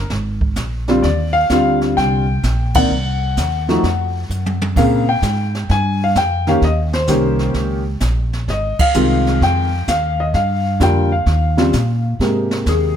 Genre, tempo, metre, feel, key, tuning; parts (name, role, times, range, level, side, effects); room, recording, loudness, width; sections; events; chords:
jazz piano trio; 129 BPM; 4/4; swing 67% on 8ths; A4 = 440 Hz
warm concert grand piano; melody; 0.0-13.0 s; C3 to Ab5; -17 LUFS; left 1 dB; plate reverb
upright bass; bass; 0.0-13.0 s; Ab1 to Bb2; -18 LUFS; equal
jazz brush drum kit; drums; 0.1-13.0 s; brushed snare drum, crash cymbal, hi-hat, kick drum, ride cymbal, snare drum, toms; -23 LUFS; right 2 dB
light reverb; -14 LUFS; side -9 dB against mid
0.0-12.2 A section
band accent 2.7, 8.7; drum fill 4.3-4.8
0.0 Bb7(no3); 1.0 Ebmaj13; 2.9 Cdim; 3.8 N.C.; 4.8 Bbm7; 6.6 Eb7; 8.5 Ab6; 10.3 Gm7; 11.3 Ebsus2; 12.2 Abmaj9